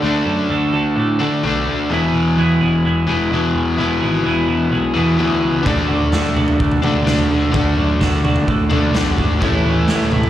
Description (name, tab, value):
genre	quiet-loud alternative rock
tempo	128 BPM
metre	4/4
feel	straight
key	unclear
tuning	A4 = 442 Hz
part	twelve-string electric guitar	arpeggios	0.0-10.3 s	A2 to A4	-22 LUFS	right 5 dB	phaser, plate reverb
part	overdriven electric guitar	riff	0.0-10.3 s	E2 to D4	-18 LUFS	left 3 dB	slapback echo
part	fuzz picked electric bass	bass	0.0-10.3 s	E1 to D3	-21 LUFS	right 1 dB	overdrive
part	raw garage drum kit	drums	5.7-10.3 s	kick drum, snare drum, toms	-18 LUFS	equal	none
room	light reverb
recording	live gig heard through the venue's PA, club reverb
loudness	-14 LUFS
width	side -12 dB against mid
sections	0.0-10.3 A section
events	none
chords	0.0 D; 1.9 E; 5.7 D; 9.4 A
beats	| 0.03 0.50 0.97 1.44 | 1.91 2.38 2.85 3.32 | 3.79 4.26 4.73 5.20 | 5.67 6.14 6.61 7.08 | 7.54 8.01 8.48 8.95 | 9.42 9.89